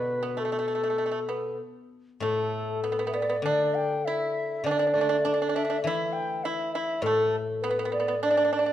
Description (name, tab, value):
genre	chinese traditional, Chinese chamber ensemble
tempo	100 BPM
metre	4/4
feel	rubato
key	D zhi mode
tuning	A4 = 439 Hz
part	bright reedy xiao	melody	0.0-8.7 s	A4 to G5	-27 LUFS	equal	none
part	pipa	second line	0.0-8.7 s	A3 to E4	-31 LUFS	right 4 dB	none
part	guzheng	accompaniment	0.0-8.7 s	A2 to D4	-31 LUFS	left 3 dB	none
room	moderate recital hall reverb, RT60 1.4 s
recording	worn, warbling old tape, cassette tape, warbly pitch drift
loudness	-24 LUFS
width	side -12 dB against mid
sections	0.0-8.7 A section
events	none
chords	none